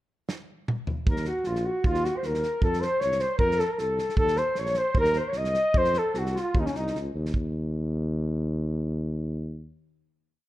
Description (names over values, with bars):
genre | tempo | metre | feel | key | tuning
balkan folk, Balkan brass band | 153 BPM | 2/4 | swing 55% on 16ths | Eb dorian sharp4 | A4 = 440 Hz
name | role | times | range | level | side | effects
loose indie drum kit | percussion | 0.3-7.5 s | kick drum, snare drum, toms | -28 LUFS | right 1 dB | none
mellow flugelhorn | melody | 1.1-7.0 s | Db4 to Eb5 | -26 LUFS | equal | none
warm clarinet | second line | 1.1-7.0 s | Db4 to Eb5 | -32 LUFS | left 1 dB | none
mellow tuba | bass | 1.1-9.7 s | Bb1 to F2 | -30 LUFS | equal | none
room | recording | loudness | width
light reverb | dark, warm production | -24 LUFS | side -15 dB against mid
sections
0.3-1.1 pickup bar; 1.1-7.3 A section; 7.3-8.9 final note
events
drum fill 0.3-1.1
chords
0.3 N.C.; 1.1 Eb5; 2.6 F; 4.2 Eb5; 5.8 F5; 6.5 Cm; 7.3 N.C.